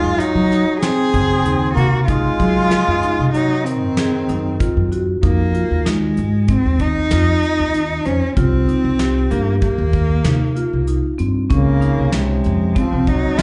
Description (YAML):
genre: progressive instrumental, band music in an uneven meter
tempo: 96 BPM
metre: 5/4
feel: straight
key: unclear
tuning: A4 = 440 Hz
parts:
  - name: warm cello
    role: melody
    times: 0.0-13.4 s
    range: Ab3 to Ab4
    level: -22 LUFS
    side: equal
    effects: none
  - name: bright trombone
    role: second line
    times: 0.0-4.9, 11.5-13.4 s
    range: C3 to C4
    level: -25 LUFS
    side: equal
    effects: none
  - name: marimba with medium mallets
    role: arpeggios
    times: 0.0-13.4 s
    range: Db3 to F5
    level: -25 LUFS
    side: equal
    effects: slapback echo
  - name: upright bass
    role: bass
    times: 0.0-13.4 s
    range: C2 to Gb3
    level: -21 LUFS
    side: equal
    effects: none
  - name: soft brush drum kit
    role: drums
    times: 0.2-13.4 s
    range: hi-hat, kick drum, snare drum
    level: -24 LUFS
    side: equal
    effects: none
room: little or no reverb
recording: live gig heard through the venue's PA, club reverb, nothing above 10.8 kHz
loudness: -17 LUFS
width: mono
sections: 0.0-5.2 A section; 5.2-13.4 B section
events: none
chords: 0.0 Ab7; 5.2 Fm7; 8.4 Cm7; 11.5 Dbmaj7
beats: 0.20 0.83 1.46 | 2.09 2.72 3.35 3.98 4.60 | 5.23 5.86 6.49 7.12 7.75 | 8.37 9.00 9.63 10.26 10.88 | 11.51 12.14 12.77 13.39